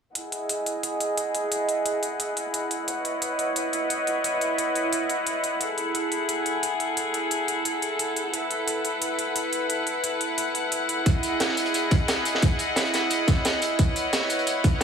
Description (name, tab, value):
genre	liquid drum and bass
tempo	176 BPM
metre	4/4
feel	straight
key	E major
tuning	A4 = 440 Hz
part	clear studio string section	sustained chords	0.1-14.8 s	E4 to F#5	-25 LUFS	equal	sidechain pumping, low-pass filter
part	electronic hi-hat	drums	0.2-14.8 s	none	-30 LUFS	equal	none
part	crunchy breakbeat drum kit	drums	11.1-14.8 s	hi-hat, snare drum	-27 LUFS	right 1 dB	high-pass filter on hats, high-pass filter on snare, high-pass filter on room
part	electronic kick drum	drums	11.1-14.7 s	none	-20 LUFS	equal	none
room	moderate plate reverb, RT60 1.2 s, small room ambience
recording	studio reverb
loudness	-23 LUFS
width	side -7 dB against mid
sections	0.2-14.8 A section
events	filter sweep on string section 0.2-14.8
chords	0.2 Emaj9; 2.9 C#m11; 5.6 F#m9; 8.3 B7sus4; 11.1 Emaj9; 13.8 C#m11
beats	| 0.15 0.49 0.83 1.18 | 1.52 1.86 2.20 2.54 | 2.88 3.22 3.56 3.90 | 4.24 4.58 4.93 5.27 | 5.61 5.95 6.29 6.63 | 6.97 7.31 7.65 7.99 | 8.34 8.68 9.02 9.36 | 9.70 10.04 10.38 10.72 | 11.06 11.40 11.74 12.09 | 12.43 12.77 13.11 13.45 | 13.79 14.13 14.47 14.81